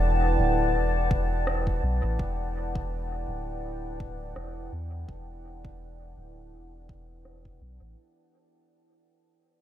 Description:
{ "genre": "ambient dub", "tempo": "83 BPM", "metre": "4/4", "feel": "swing 55% on 16ths", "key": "E minor", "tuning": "A4 = 440 Hz", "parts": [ { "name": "deep dark ambient pad", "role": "sustained chords", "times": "0.0-8.0 s", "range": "E4 to A5", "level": "-30 LUFS", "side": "left 1 dB", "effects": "chorus, built-in reverb" }, { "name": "soft dub sub bass", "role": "bass", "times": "0.0-8.0 s", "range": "D1 to E2", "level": "-29 LUFS", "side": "equal", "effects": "none" }, { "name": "electronic kick drum", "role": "drums", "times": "1.1-7.6 s", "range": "none", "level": "-32 LUFS", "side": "equal", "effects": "overdrive" }, { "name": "electronic rim click", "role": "drums", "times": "1.5-7.4 s", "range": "none", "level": "-39 LUFS", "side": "right 1 dB", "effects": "low-pass filter on perc, low-pass filter on snare, low-pass filter on room, dub echo" } ], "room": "light reverb, digital ambience", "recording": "none", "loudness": "-26 LUFS", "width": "side -11 dB against mid", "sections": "0.0-8.0 A section", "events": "fade-out 0.0-8.0; filter sweep on drum 0.0-8.0", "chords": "0.0 Em11" }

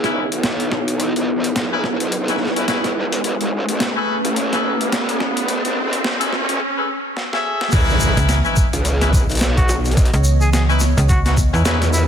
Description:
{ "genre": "glitch hop", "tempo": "107 BPM", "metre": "4/4", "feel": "swing 58% on 16ths", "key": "C# minor", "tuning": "A4 = 440 Hz", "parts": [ { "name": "dark analog pad", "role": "sustained chords", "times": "0.0-12.1 s", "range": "E3 to D#5", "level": "-25 LUFS", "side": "right 1 dB", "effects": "chorus, phaser, sidechain pumping" }, { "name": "bright horn section", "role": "stabs", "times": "0.0-11.8 s", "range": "C#4 to E5", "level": "-24 LUFS", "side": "left 2 dB", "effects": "sidechain pumping, low-pass filter, dub echo" }, { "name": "growl bass", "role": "bass", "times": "0.0-12.1 s", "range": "E1 to E2", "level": "-21 LUFS", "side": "equal", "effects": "chorus, tube saturation, high-pass filter" }, { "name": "boom bap sampler-style drum kit", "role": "drums", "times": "0.0-11.9 s", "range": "crash cymbal, hi-hat, snare drum", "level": "-24 LUFS", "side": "equal", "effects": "overdrive" }, { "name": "riser and impact", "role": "sound effects", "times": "0.4-10.0 s", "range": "none", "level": "-25 LUFS", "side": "equal", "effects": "none" }, { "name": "electronic kick drum", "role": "drums", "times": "7.7-11.5 s", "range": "none", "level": "-16 LUFS", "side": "equal", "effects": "overdrive" }, { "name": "tube shaker", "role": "percussion", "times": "7.7-12.1 s", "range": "none", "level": "-28 LUFS", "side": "left 2 dB", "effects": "none" }, { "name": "slap-like FM bass", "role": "bass", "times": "8.2-11.6 s", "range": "C#2 to E2", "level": "-15 LUFS", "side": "equal", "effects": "tube saturation" }, { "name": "warm trumpet", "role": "melody", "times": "9.6-12.0 s", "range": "E4 to G#4", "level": "-26 LUFS", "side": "equal", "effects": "dub echo" } ], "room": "light reverb, digital ambience", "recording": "dense, heavily limited modern master, high-pass filter", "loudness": "-16 LUFS", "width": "side -8 dB against mid", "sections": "0.0-7.7 A section; 7.7-12.1 B section", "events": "build-up 0.0-7.7; riser 0.4-6.6; drum fill 7.2-7.7; drop 7.7-12.1; impact 7.7-10.0", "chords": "0.0 C#m9; 3.2 Amaj9; 7.7 C#m9" }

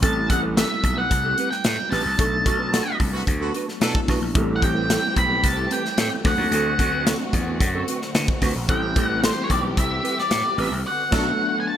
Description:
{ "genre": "polished 1980s jazz-funk pop", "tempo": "111 BPM", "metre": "4/4", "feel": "straight", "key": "A dorian", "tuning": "A4 = 439 Hz", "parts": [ { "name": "octave-fuzz lead guitar", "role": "melody", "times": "0.0-11.8 s", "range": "C5 to B5", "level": "-24 LUFS", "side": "equal", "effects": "distortion" }, { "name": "mellow tine electric piano", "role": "accompaniment", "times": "0.0-11.8 s", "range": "E3 to A4", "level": "-29 LUFS", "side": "left 1 dB", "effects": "medium stereo tremolo, lush chorus" }, { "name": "mellow electric guitar", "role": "riff", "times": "0.0-11.3 s", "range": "C4 to B4", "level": "-30 LUFS", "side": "right 5 dB", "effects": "ensemble chorus" }, { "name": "gritty slap bass", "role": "bass", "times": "0.0-11.3 s", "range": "A1 to D3", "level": "-26 LUFS", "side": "equal", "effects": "overdrive" }, { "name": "modern studio drum kit", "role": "drums", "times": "0.0-11.3 s", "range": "crash cymbal, hi-hat, kick drum, snare drum", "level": "-23 LUFS", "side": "equal", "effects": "gated reverb" }, { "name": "warm horn section", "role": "second line", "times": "2.7-4.0, 11.1-11.3 s", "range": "D3 to A4", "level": "-32 LUFS", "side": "equal", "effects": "none" }, { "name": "dark studio string section", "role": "sustained chords", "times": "4.4-11.8 s", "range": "D3 to G4", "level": "-33 LUFS", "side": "left 1 dB", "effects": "none" } ], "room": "light reverb", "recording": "bright 1980s-style digital production", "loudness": "-19 LUFS", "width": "side -10 dB against mid", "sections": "0.0-11.8 A section", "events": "band accent 2.2-4.4, 10.9-11.8", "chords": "0.0 Am7; 2.2 Bm7; 4.4 Am7; 6.2 D7; 8.7 Am7; 10.9 Bm7" }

